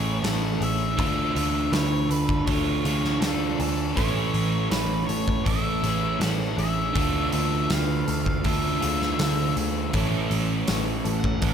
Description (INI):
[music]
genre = rock, shoegaze and dream pop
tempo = 80 BPM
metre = 4/4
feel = straight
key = A major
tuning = A4 = 440 Hz
[part]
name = octave-fuzz lead guitar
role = melody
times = 0.0-11.5 s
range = A4 to F#5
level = -31 LUFS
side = left 3 dB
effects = distortion, tape echo
[part]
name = electric guitar through a small old amp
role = arpeggios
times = 0.0-11.5 s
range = G#4 to G#5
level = -36 LUFS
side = equal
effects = analog chorus, tape echo
[part]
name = crunchy overdriven guitar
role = riff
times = 0.0-11.5 s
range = A2 to F4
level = -30 LUFS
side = left 9 dB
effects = lush chorus
[part]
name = crunchy overdriven guitar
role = riff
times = 0.0-11.5 s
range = A2 to F4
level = -28 LUFS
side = right 10 dB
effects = reverse reverb
[part]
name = vintage muted picked electric bass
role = bass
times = 0.0-11.5 s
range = A1 to D2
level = -28 LUFS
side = equal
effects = none
[part]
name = huge arena drum kit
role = drums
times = 0.2-11.5 s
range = hi-hat, kick drum, snare drum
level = -29 LUFS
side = equal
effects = none
[sound]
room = light reverb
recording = none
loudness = -22 LUFS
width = side -8 dB against mid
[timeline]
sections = 0.0-11.5 A section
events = none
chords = 0.0 Amaj7; 1.0 Dm; 4.0 Amaj7; 7.0 Dmadd9; 9.9 A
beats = 0.24 | 0.98 1.73 2.48 3.23 | 3.97 4.72 5.46 6.21 | 6.96 7.70 8.44 9.19 | 9.93 10.68 11.42